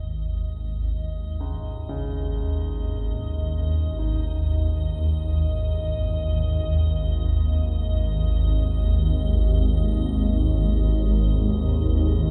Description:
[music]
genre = dark ambient drone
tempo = free time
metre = none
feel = none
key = unclear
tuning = A4 = 442 Hz
[part]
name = swarming drone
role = drone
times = 0.0-12.3 s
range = G#1 to D#2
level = -24 LUFS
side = equal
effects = built-in reverb
[part]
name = icy glass pad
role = texture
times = 0.0-12.3 s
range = D#5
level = -40 LUFS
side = equal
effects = chorus, built-in reverb
[part]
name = warm grand piano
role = arpeggios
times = 1.4-12.3 s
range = C#2 to D#4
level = -41 LUFS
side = equal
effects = tape echo
[sound]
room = wet cathedral reverb, RT60 6.3 s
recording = in a vast, echoing space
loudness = -24 LUFS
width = mono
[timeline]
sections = 0.0-12.3 A section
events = fade-in on ambient pad 0.0-12.3; fade-in on grand piano 0.0-12.3; filter sweep on synth drone 0.0-12.3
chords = 0.0 G#5

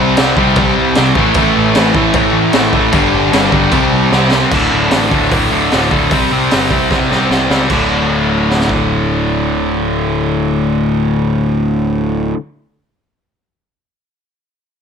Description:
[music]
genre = punk rock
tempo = 151 BPM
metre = 4/4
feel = straight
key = unclear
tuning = A4 = 438 Hz
[part]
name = cranked stack guitar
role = riff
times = 0.0-12.4 s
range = D2 to C4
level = -15 LUFS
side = left 10 dB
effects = overdrive
[part]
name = distorted electric guitar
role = riff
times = 0.0-12.4 s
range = D2 to C4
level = -16 LUFS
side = right 15 dB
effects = overdrive
[part]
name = distorted electric guitar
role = riff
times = 0.0-4.5 s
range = G2 to C4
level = -18 LUFS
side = equal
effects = distortion
[part]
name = fuzz picked electric bass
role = bass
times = 0.0-12.3 s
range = D1 to C#2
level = -20 LUFS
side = equal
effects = overdrive
[part]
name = raw garage drum kit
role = drums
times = 0.2-8.8 s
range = crash cymbal, hi-hat, kick drum, snare drum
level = -16 LUFS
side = equal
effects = none
[sound]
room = light reverb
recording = none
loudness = -11 LUFS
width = side -7 dB against mid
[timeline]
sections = 0.0-4.5 A section; 4.5-7.7 B section; 7.7-10.9 C section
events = drum fill 4.1-4.5, 6.9-7.7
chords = 0.0 C5; 1.2 A5; 2.9 G5; 3.7 C5; 4.5 D5; 6.1 C5; 7.7 D5

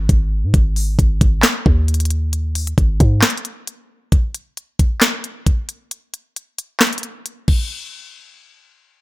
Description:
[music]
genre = hip hop, trap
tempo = 134 BPM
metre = 4/4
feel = half-time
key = unclear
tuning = A4 = 440 Hz
[part]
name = warm 808-style bass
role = bass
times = 0.0-3.2 s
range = G#1 to G#2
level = -16 LUFS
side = equal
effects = none
[part]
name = trap drum kit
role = drums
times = 0.1-7.6 s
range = crash cymbal, handclaps, hi-hat, kick drum, snare drum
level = -15 LUFS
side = equal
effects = none
[sound]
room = digital ambience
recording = none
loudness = -15 LUFS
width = side -19 dB against mid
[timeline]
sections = 0.0-4.1 A section; 4.1-7.7 B section; 7.7-9.0 C section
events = break 3.2-4.1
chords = none

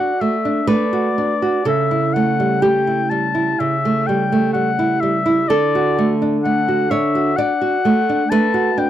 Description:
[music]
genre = romantic duo for oboe and classical guitar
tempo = 63 BPM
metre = 4/4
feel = rubato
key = D major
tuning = A4 = 440 Hz
[part]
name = warm oboe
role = melody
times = 0.0-8.9 s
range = D5 to A5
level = -20 LUFS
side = left 5 dB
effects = none
[part]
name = nylon-string guitar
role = accompaniment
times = 0.0-8.9 s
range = C#3 to D5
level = -16 LUFS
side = right 2 dB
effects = none
[sound]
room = little or no reverb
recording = dry, close 1970s-style studio recording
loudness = -15 LUFS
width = side -11 dB against mid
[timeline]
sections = 0.0-8.9 A section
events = none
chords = 0.0 D; 1.7 A7/C#; 5.5 D

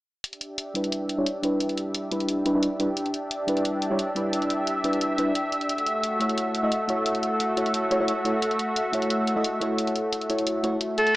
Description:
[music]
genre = liquid drum and bass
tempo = 176 BPM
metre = 4/4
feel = straight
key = E dorian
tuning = A4 = 438 Hz
[part]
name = lush unison pad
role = sustained chords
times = 0.2-11.1 s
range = A3 to E5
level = -26 LUFS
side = equal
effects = chorus
[part]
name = electronic hi-hat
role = drums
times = 0.2-11.1 s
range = none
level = -32 LUFS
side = equal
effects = none
[part]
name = mellow FM electric piano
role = accompaniment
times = 0.7-10.8 s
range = G3 to D#5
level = -26 LUFS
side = equal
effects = chorus, phaser, low-pass filter, tape echo
[part]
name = breathy alto saxophone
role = melody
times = 11.0-11.2 s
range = A4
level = -18 LUFS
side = equal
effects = none
[sound]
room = moderate digital room reverb, RT60 1.1 s, small room ambience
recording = small speaker sound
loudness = -23 LUFS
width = side -18 dB against mid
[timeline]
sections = 0.2-11.2 A section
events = filter sweep on FM electric piano 0.2-11.2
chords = 0.2 Em7; 5.7 F#m7

